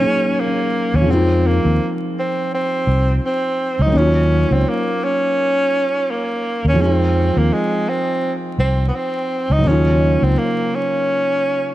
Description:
lo-fi hip hop; 84 BPM; 4/4; swing 58% on 16ths; Eb dorian; A4 = 440 Hz
breathy tenor saxophone; melody; 0.0-11.7 s; Ab3 to Eb4; -19 LUFS; right 1 dB; analog delay
felt-muted upright piano; accompaniment; 0.0-11.7 s; Db3 to Ab4; -21 LUFS; left 1 dB; analog delay
fingered electric bass; bass; 0.9-10.4 s; C2 to F2; -16 LUFS; equal
light reverb, small room ambience; echo-heavy mix, vinyl crackle; -15 LUFS; side -15 dB against mid
0.0-11.7 A section
0.0 Ebm9; 1.1 Fm7; 3.9 Ebm9; 6.8 Fm7; 9.6 Ebm9

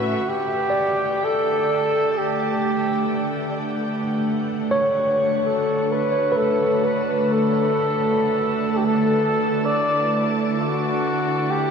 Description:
ambient; 64 BPM; 4/4; straight; A4 = 439 Hz
mellow flugelhorn; melody; 0.0-11.7 s; F#4 to D5; -22 LUFS; equal; diffuse ambient delay
muted studio string section; sustained chords; 0.0-11.7 s; A2 to A5; -30 LUFS; equal
barky tine electric piano; arpeggios; 0.0-11.7 s; B4 to D5; -25 LUFS; equal; diffuse ambient delay
organ-like drone; drone; 0.9-11.7 s; D3 to A3; -24 LUFS; right 2 dB; ensemble chorus, built-in reverb
wet shimmer reverb, RT60 6.6 s; dark, warm production; -19 LUFS; side -6 dB against mid
0.3-11.7 A section
fade-in on string section 0.3-11.7
0.3 Em7/D; 4.0 Bm/D; 7.8 Dsus2

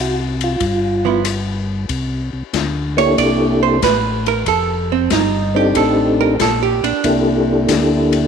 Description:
soul jazz organ trio; 93 BPM; 4/4; swing 69% on 8ths; C mixolydian; A4 = 439 Hz
percussive tonewheel organ; melody; 0.0-8.3 s; Bb3 to A4; -16 LUFS; left 1 dB; slow rotary speaker, chorus vibrato, slapback echo
tonewheel organ; bass; 0.0-8.3 s; F1 to D2; -21 LUFS; left 1 dB; slow rotary speaker
open jazz drum kit; drums; 0.4-8.2 s; hi-hat, kick drum, ride cymbal, rim click, snare drum; -24 LUFS; left 10 dB
archtop guitar, miked and amplified; accompaniment; 1.0-7.8 s; F3 to D5; -18 LUFS; right 10 dB
moderate spring reverb, RT60 2.2 s; 1960s-style stereo with parts hard left and right; -14 LUFS; side -6 dB against mid
0.0-1.9 A section; 1.9-8.3 B section
hollow-body jazz guitar solo 1.9-8.3
0.0 N.C.; 0.6 G6; 1.9 C13; 4.5 F13; 7.0 C13

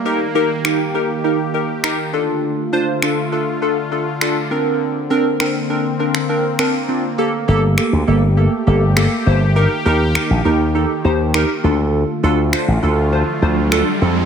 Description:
dance-pop; 101 BPM; 4/4; straight; A4 = 440 Hz
sweeping resonant pad; sustained chords; 0.0-14.3 s; D3 to A4; -23 LUFS; equal; chorus
glassy digital keys; accompaniment; 0.1-14.3 s; Bb3 to C5; -18 LUFS; right 1 dB; chorus, tremolo
electronic finger snaps; drums; 0.6-13.9 s; -23 LUFS; equal
slap bass with an envelope filter; bass; 7.5-14.3 s; G1 to F2; -15 LUFS; equal
riser; sound effects; 13.3-14.3 s; -24 LUFS; right 4 dB
light reverb; -14 LUFS; side -7 dB against mid
0.0-14.3 A section
riser 13.3-14.3
0.1 Eb; 2.1 Dm; 4.5 Bbadd9; 7.2 Gmadd9; 9.6 Eb; 11.6 Dm

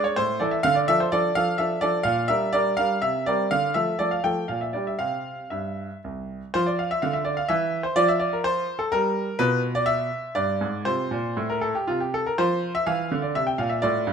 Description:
classical-period piano sonatina; 114-130 BPM; 3/4; rubato; A4 = 440 Hz
clear baby grand piano; solo; 0.0-14.1 s; C2 to G5; -22 LUFS; right 1 dB
moderate large studio reverb, RT60 1.4 s; minimal, uncompressed stereo recording; -22 LUFS; side -7 dB against mid
0.0-6.6 A section; 6.6-14.1 B section
0.2 Am; 0.7 Dm; 2.1 Gm/Bb; 3.0 C7; 3.5 Dm; 4.5 Gm/Bb; 5.0 C; 6.6 Dm9; 7.5 N.C.; 9.4 Bdim7; 10.9 F; 11.9 N.C.; 12.4 Dm9; 13.3 C7

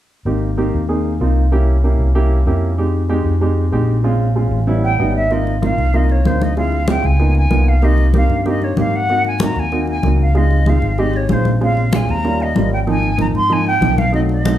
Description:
Afro-Cuban jazz; 190 BPM; 4/4; straight; Ab major; A4 = 435 Hz
dark grand piano; accompaniment; 0.3-14.6 s; F3 to Gb5; -19 LUFS; right 1 dB
fingered electric bass; bass; 0.3-14.5 s; Ab1 to Ab2; -16 LUFS; equal
concert flute; melody; 4.8-14.6 s; C5 to C6; -20 LUFS; right 1 dB
congas; percussion; 5.3-14.6 s; -22 LUFS; left 1 dB
moderate large studio reverb, RT60 0.9 s; band playing live in one room; -13 LUFS; side -12 dB against mid
0.3-5.3 A section; 5.3-14.6 B section
grand piano fill 4.7-5.3
0.3 Abmaj9; 1.5 C7b9; 2.8 Fm7; 4.0 Bbm9; 4.7 A9; 5.3 Ab6; 6.6 Dm7b5; 7.2 Db13; 7.8 Cm7; 9.1 Ab7; 10.3 Dbmaj7; 11.6 Bbm7; 12.2 Eb7; 12.9 Ab6

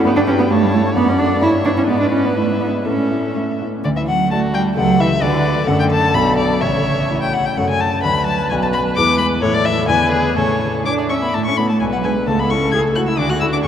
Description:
quick classical-period movement for piano quartet; 120-135 BPM; 2/4; rubato; D major, A major from 7.6 s; A4 = 440 Hz
muted violin; melody; 0.0-13.7 s; G#4 to G#6; -20 LUFS; left 4 dB
muted cello; second line; 0.0-13.7 s; B2 to G#4; -19 LUFS; right 3 dB
muted viola; accompaniment; 0.0-13.7 s; F#4 to E5; -24 LUFS; right 1 dB
warm concert grand piano; accompaniment; 0.0-13.7 s; A1 to E5; -20 LUFS; left 1 dB
wet cathedral reverb, RT60 6.0 s; in a vast, echoing space; -14 LUFS; side -9 dB against mid
0.0-3.8 A section; 3.8-11.3 B section; 11.3-13.7 A section
0.1 G; 0.5 A7/G; 1.0 D/F#; 1.4 Em/G; 1.9 E7/G#; 2.9 A; 3.8 D; 4.8 A7/C#; 5.2 D; 5.7 D/F#; 6.1 Bm; 6.6 A; 7.6 F#m; 8.0 D; 8.5 Bm; 9.0 E7; 9.4 A; 9.9 E7; 10.4 A; 11.8 G#dim/B; 12.3 A/C#; 13.2 D

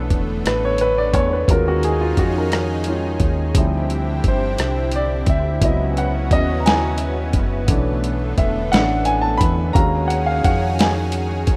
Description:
slow six-eight R&B; 58 BPM (dotted quarters); 6/8; straight; A4 = 440 Hz
warm grand piano; accompaniment; 0.0-11.6 s; D#3 to B5; -24 LUFS; equal
lush unison pad; sustained chords; 0.0-11.6 s; C#3 to G#4; -28 LUFS; equal; chorus
deep dub fingered electric bass; bass; 0.0-11.6 s; E1 to E#2; -24 LUFS; equal
dusty soul sampler-style drum kit; drums; 0.1-11.6 s; hi-hat, kick drum, rim click, snare drum; -21 LUFS; equal; overdrive
light reverb; rough home demo mix; -19 LUFS; mono
0.0-11.6 A section
grand piano solo 0.0-11.6
0.0 Bm11; 1.5 D#m11; 3.5 Dm11; 5.6 C#m11; 7.7 Bm11; 9.8 D#m11

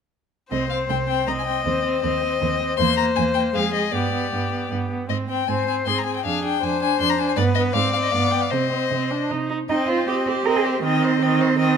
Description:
quick classical-period movement for string quartet; 158 BPM; 3/4; straight; C minor; A4 = 440 Hz
rich violin; melody; 0.5-11.8 s; C5 to C6; -25 LUFS; left 12 dB
warm violin; second line; 0.5-11.8 s; G4 to Eb5; -25 LUFS; left 5 dB
rich viola; accompaniment; 0.5-11.8 s; Eb3 to Eb4; -25 LUFS; right 2 dB
warm cello; bass; 0.5-11.8 s; C2 to Bb4; -24 LUFS; right 6 dB
moderate recital hall reverb, RT60 1.7 s; close, detailed microphones; -19 LUFS; side -6 dB against mid
0.5-9.7 A section; 9.7-11.8 A section
0.5 Cm; 1.7 Cm/Eb; 2.8 C7/E; 3.6 Fm; 3.9 G; 5.1 Ab; 6.2 Ddim/F; 7.4 G; 7.7 Ab; 8.1 G7; 8.5 Cm; 10.8 Cm/Eb

